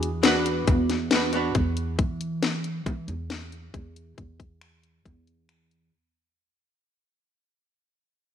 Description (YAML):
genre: progressive instrumental, band music in an uneven meter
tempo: 137 BPM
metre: 5/4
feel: straight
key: unclear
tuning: A4 = 439 Hz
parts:
  - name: archtop guitar, miked and amplified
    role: accompaniment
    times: 0.0-1.5 s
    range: B3 to B4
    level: -26 LUFS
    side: right 1 dB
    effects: double-tracked left and right
  - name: upright bass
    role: bass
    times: 0.0-5.9 s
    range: E2 to E3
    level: -29 LUFS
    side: right 2 dB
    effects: none
  - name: garage drum kit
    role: drums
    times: 0.0-5.8 s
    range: finger snaps, hi-hat, kick drum, snare drum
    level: -25 LUFS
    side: left 3 dB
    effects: none
room: moderate echo chamber reverb, RT60 1.7 s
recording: 1960s-style stereo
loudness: -23 LUFS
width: side -9 dB against mid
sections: 0.0-5.9 A section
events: fade-out 0.0-5.9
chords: 0.0 E7(no3)